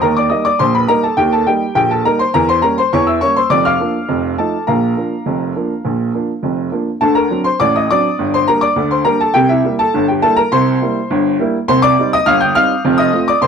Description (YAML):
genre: ragtime piano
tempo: 103 BPM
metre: 2/4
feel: straight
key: unclear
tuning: A4 = 441 Hz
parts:
  - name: clear upright piano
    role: solo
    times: 0.0-13.5 s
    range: F1 to G6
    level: -12 LUFS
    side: equal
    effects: none
room: small room ambience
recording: dry, close 1970s-style studio recording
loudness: -12 LUFS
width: side -6 dB against mid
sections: 0.0-7.0 A section; 7.0-13.5 B section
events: none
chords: 0.0 Eb; 2.3 Edim7; 3.5 Bb/F; 4.1 F7; 4.7 Bb; 7.0 D7; 8.2 Gm; 9.4 C7; 11.7 Cm; 12.8 F7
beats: | 0.02 0.60 | 1.18 1.76 | 2.34 2.92 | 3.50 4.08 | 4.67 5.26 | 5.85 6.43 | 7.02 7.61 | 8.19 8.77 | 9.35 9.94 | 10.52 11.10 | 11.68 12.26 | 12.84 13.42